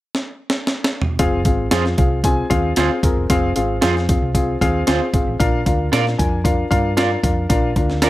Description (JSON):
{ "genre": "uptempo 1960s-style soul", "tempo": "114 BPM", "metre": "4/4", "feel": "straight", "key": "F dorian", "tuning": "A4 = 441 Hz", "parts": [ { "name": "breakbeat sampler-style drum kit", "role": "drums", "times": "0.1-8.1 s", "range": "hi-hat, kick drum, snare drum, toms", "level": "-19 LUFS", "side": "equal", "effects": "none" }, { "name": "dark concert grand piano", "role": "accompaniment", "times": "1.2-8.1 s", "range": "C4 to Ab5", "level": "-20 LUFS", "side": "left 2 dB", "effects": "none" }, { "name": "hollow-body short-scale fingered electric bass", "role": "bass", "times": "1.2-8.1 s", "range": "Eb1 to Bb2", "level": "-22 LUFS", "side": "equal", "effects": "none" }, { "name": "electric guitar at the edge of break-up", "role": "stabs", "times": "1.7-8.1 s", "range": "F4 to D5", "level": "-22 LUFS", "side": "right 7 dB", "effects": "none" } ], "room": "digital ambience", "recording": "none", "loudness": "-16 LUFS", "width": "side -16 dB against mid", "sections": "0.0-1.2 A section; 1.2-8.1 B section", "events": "drum fill 0.1-1.2", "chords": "0.0 N.C.; 1.2 Fm; 5.4 Bb" }